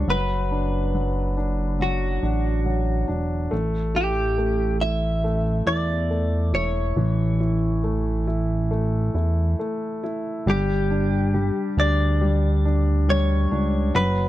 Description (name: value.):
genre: pop ballad.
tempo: 69 BPM.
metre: 4/4.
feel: straight.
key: unclear.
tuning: A4 = 440 Hz.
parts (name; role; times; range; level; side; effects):
direct-recorded clean electric guitar; melody; 0.0-14.3 s; F#4 to E5; -26 LUFS; equal; lush chorus.
warm concert grand piano; accompaniment; 0.0-14.3 s; E3 to E4; -26 LUFS; left 1 dB; none.
chorused synth bass; bass; 0.0-14.3 s; E1 to E2; -22 LUFS; equal; none.
room: little or no reverb.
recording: dry, close 1970s-style studio recording.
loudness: -20 LUFS.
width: side -14 dB against mid.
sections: 0.0-10.5 A section; 10.5-14.3 B section.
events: break 9.6-10.5.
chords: 0.1 D6/F#; 3.5 A; 10.5 G5.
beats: | 0.08 0.94 1.80 2.66 | 3.52 4.37 5.23 6.09 | 6.96 7.83 8.70 9.58 | 10.46 11.33 12.21 13.08 | 13.94.